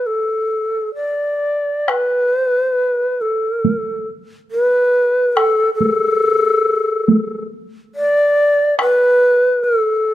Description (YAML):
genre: japanese traditional, Japanese chamber music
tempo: 70 BPM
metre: 4/4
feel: rubato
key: unclear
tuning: A4 = 439 Hz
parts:
  - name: bright long shakuhachi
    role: melody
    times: 0.0-10.1 s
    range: A4 to D5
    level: -14 LUFS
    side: equal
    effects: none
  - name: taiko ensemble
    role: percussion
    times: 1.9-9.0 s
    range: none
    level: -17 LUFS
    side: right 1 dB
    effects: none
room: light reverb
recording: close, detailed microphones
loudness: -14 LUFS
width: side -14 dB against mid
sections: 0.0-1.9 A section; 1.9-10.1 B section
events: none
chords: none